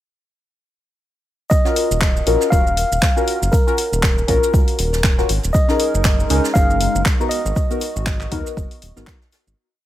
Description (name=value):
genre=deep house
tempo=119 BPM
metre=4/4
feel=swing 57% on 16ths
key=Eb minor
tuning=A4 = 440 Hz
part: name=mellow tine electric piano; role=melody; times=1.5-9.0 s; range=Bb4 to F5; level=-23 LUFS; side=right 1 dB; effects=vintage 12-bit sampler grit
part: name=deep house drum kit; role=drums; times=1.5-9.6 s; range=handclaps, hi-hat, shaker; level=-24 LUFS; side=equal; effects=overdrive
part: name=electronic kick drum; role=drums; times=1.5-9.2 s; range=none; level=-17 LUFS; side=equal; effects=overdrive
part: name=soft brush drum kit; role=drums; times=1.5-9.5 s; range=hi-hat, shaker, snare drum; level=-34 LUFS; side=equal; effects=none
part: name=deep mellow chord stab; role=stabs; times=1.6-9.2 s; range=Cb4 to Bb4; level=-22 LUFS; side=left 3 dB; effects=chorus, phaser, sidechain pumping, tape echo
part: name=round analog bass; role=bass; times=1.9-9.5 s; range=Eb1 to Eb2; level=-21 LUFS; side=equal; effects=tube saturation, sidechain pumping
part: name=hollow soft pad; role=sustained chords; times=5.5-9.6 s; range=Ab3 to Bb4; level=-29 LUFS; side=left 1 dB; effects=ensemble chorus, sidechain pumping
room=little or no reverb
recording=none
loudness=-15 LUFS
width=side -13 dB against mid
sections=1.5-9.6 drop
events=drop 1.5-9.6; fade-out 6.9-9.6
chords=1.5 Ebm9; 5.5 Gb69; 7.3 Abm9